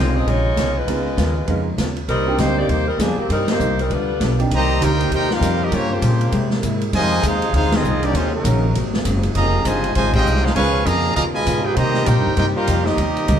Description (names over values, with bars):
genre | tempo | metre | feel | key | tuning
jazz, big band swing | 198 BPM | 4/4 | swing 62% on 8ths | C minor | A4 = 439 Hz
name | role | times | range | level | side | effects
clear saxophone section | melody | 0.0-4.4 s | Eb3 to Eb5 | -21 LUFS | equal | none
bright upright piano | accompaniment | 0.0-4.5 s | Ab3 to G4 | -26 LUFS | right 2 dB | none
hollow-body jazz guitar | accompaniment | 0.0-13.4 s | F2 to Bb4 | -26 LUFS | left 2 dB | none
upright bass | bass | 0.0-13.4 s | F1 to C3 | -20 LUFS | equal | none
swinging big-band drum kit | drums | 0.3-13.4 s | crash cymbal, hi-hat, kick drum, ride cymbal, snare drum | -26 LUFS | equal | none
clear trombone section | second line | 3.9-13.4 s | Cb3 to G4 | -25 LUFS | right 1 dB | none
bright trumpet section | melody | 4.5-13.4 s | Gb3 to Db6 | -21 LUFS | equal | none
bright trombone section | sustained chords | 4.5-13.4 s | Cb3 to G4 | -29 LUFS | left 1 dB | none
room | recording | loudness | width
wet club reverb, RT60 0.7 s | heard from further back in the room | -16 LUFS | side -9 dB against mid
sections
0.0-4.5 A section; 4.5-13.4 B section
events
band accent 3.4, 7.7, 10.1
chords
0.0 Dbmaj9; 0.9 Db13; 2.1 Cm7; 3.9 G7; 4.5 Cm7; 5.7 Gm7b5; 6.3 C7b13; 6.9 Fm7; 8.1 Ebm7; 8.7 Ab9; 9.3 Dbmaj9; 10.6 Db13; 11.8 Cm7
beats
0.27 0.57 | 0.87 1.18 1.48 1.78 | 2.08 2.39 2.69 2.99 | 3.30 3.60 3.90 4.21 | 4.51 4.81 5.11 5.42 | 5.72 6.02 6.32 6.62 | 6.93 7.23 7.53 7.83 | 8.13 8.44 8.74 9.04 | 9.35 9.65 9.95 10.25 | 10.56 10.86 11.16 11.46 | 11.77 12.07 12.37 12.67 | 12.97 13.28